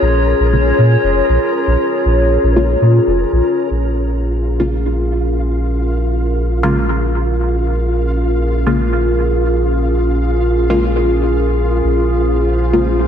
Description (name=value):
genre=dub techno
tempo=118 BPM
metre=4/4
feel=straight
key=Bb minor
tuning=A4 = 440 Hz
part: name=warbly tape-like pad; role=sustained chords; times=0.0-13.1 s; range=Db4 to Db5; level=-16 LUFS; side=left 1 dB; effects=chorus, built-in reverb
part: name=soft dub sub bass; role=bass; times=0.0-13.1 s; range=F1 to Bb2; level=-16 LUFS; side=equal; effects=tube saturation
part: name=flickering grainy texture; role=texture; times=0.0-13.1 s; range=F4 to Bb4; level=-26 LUFS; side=equal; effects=built-in reverb
part: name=filtered dub chord stab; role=stabs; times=0.5-12.9 s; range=Db3 to F4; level=-20 LUFS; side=left 1 dB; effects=chorus, phaser, cassette tape, dub echo
room=moderate lush hall reverb, RT60 2.7 s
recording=dreamy mix soaked in reverb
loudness=-13 LUFS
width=side -8 dB against mid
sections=0.0-3.7 A section; 3.7-13.1 B section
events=filter sweep on synth stab 0.0-3.7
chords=0.0 Bbm7